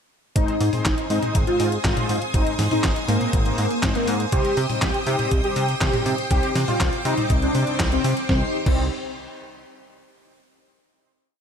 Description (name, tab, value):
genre	italo disco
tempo	121 BPM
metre	4/4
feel	straight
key	C minor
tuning	A4 = 444 Hz
part	wide unison lead	melody	0.4-8.8 s	Bb3 to G4	-25 LUFS	equal	ensemble chorus, ping-pong delay
part	string machine, full ensemble	sustained chords	0.4-8.5 s	Eb4 to Eb6	-29 LUFS	equal	ensemble chorus
part	mellow synth brass	stabs	0.4-8.8 s	Ab2 to C5	-30 LUFS	left 2 dB	chorus, cassette tape
part	chorused synth bass	bass	0.4-8.9 s	Ab1 to C3	-25 LUFS	equal	none
part	detuned 8-bit digital drum machine	drums	0.4-8.8 s	crash cymbal, handclaps, hi-hat, snare drum, toms	-27 LUFS	left 1 dB	none
part	electronic kick drum	drums	0.4-8.8 s	none	-23 LUFS	equal	none
room	light reverb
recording	none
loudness	-19 LUFS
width	side -7 dB against mid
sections	0.4-8.3 chorus; 8.3-10.3 final chord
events	band accent 7.8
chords	0.4 Ab; 4.3 Cm